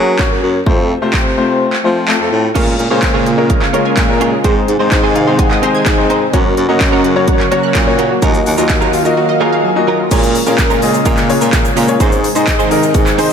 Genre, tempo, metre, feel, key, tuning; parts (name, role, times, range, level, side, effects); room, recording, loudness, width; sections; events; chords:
dance-pop; 127 BPM; 4/4; straight; Bb minor; A4 = 440 Hz
clear baby grand piano; accompaniment; 0.0-13.3 s; Ab3 to Bb5; -15 LUFS; left 3 dB; sidechain pumping, slapback echo
warm baritone saxophone; bass; 0.0-13.3 s; Eb2 to Gb3; -17 LUFS; equal; sidechain pumping
pop drum kit; drums; 0.2-13.3 s; crash cymbal, handclaps, hi-hat, kick drum, shaker; -15 LUFS; equal
direct-recorded clean electric guitar; riff; 2.5-13.3 s; Gb3 to Db5; -21 LUFS; right 6 dB; ensemble chorus, slapback echo
lush unison pad; sustained chords; 2.9-13.3 s; C3 to F5; -19 LUFS; equal; chorus, phaser, sidechain pumping
analog pluck; arpeggios; 2.6-10.1 s; Gb3 to Ab6; -22 LUFS; right 4 dB; chorus, sidechain pumping, tape echo, slapback echo
egg shaker; percussion; 10.1-13.3 s; -34 LUFS; right 13 dB
moderate lush hall reverb, RT60 2.0 s, digital ambience; big arena sound; -10 LUFS; side -7 dB against mid
0.0-2.6 A section; 2.6-10.1 B section; 10.1-13.3 C section
kick muted 1.6-2.6; grand piano fill 4.9-6.3, 9.2-10.1
0.0 Gb; 0.7 F; 2.6 Bbm7; 4.4 Ab; 6.3 Gb; 8.2 Ebmadd9; 10.1 Bbm7; 12.0 Ab